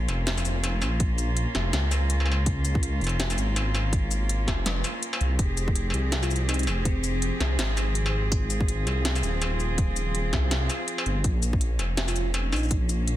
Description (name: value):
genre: half-time drum and bass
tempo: 164 BPM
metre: 4/4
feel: swing 57% on 16ths, half-time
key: unclear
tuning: A4 = 439 Hz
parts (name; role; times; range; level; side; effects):
- rich chamber cello section; sustained chords; 0.0-13.2 s; F3 to Ab4; -33 LUFS; right 1 dB; sidechain pumping
- dark detuned saw bass; bass; 0.0-13.2 s; Eb1 to Db2; -26 LUFS; equal; tube saturation
- industrial drum kit; drums; 0.1-13.2 s; hi-hat, shaker, snare drum, struck metal; -30 LUFS; equal; none
- electronic kick drum; drums; 1.0-12.8 s; none; -26 LUFS; equal; none
- bell-like FM electric piano; melody; 6.2-7.4, 12.1-12.7 s; C4 to F4; -35 LUFS; equal; chorus, tremolo, ping-pong delay
room: digital ambience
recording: dense, heavily limited modern master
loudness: -23 LUFS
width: side -13 dB against mid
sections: 0.0-13.2 A section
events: none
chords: 0.0 Bbm; 5.4 Fm; 11.2 Bbm